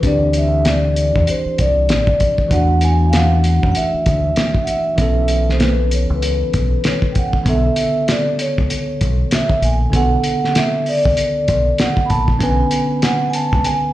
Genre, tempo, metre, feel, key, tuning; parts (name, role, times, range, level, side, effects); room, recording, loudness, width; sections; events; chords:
hip hop, jazz-hop; 97 BPM; 4/4; swing 63% on 16ths; B phrygian, B dorian from 7.5 s; A4 = 441 Hz
vibraphone with soft mallets; melody; 0.0-13.9 s; B4 to B5; -19 LUFS; equal
bell-like tine electric piano; accompaniment; 0.0-13.9 s; C#3 to B4; -22 LUFS; right 1 dB; fast stereo tremolo
deep dub fingered electric bass; bass; 0.0-13.6 s; A1 to F#2; -17 LUFS; equal
cloth-damped thuddy drum kit; drums; 0.0-13.8 s; hi-hat, kick drum, snare drum; -19 LUFS; equal; vintage 12-bit sampler grit
light reverb; played on a big sound system in a bare room, stone room reverb; -14 LUFS; side -15 dB against mid
0.0-7.5 A section; 7.5-13.9 B section
0.0 D9sus4; 2.5 E9sus4; 5.0 B9sus4; 7.5 Bm9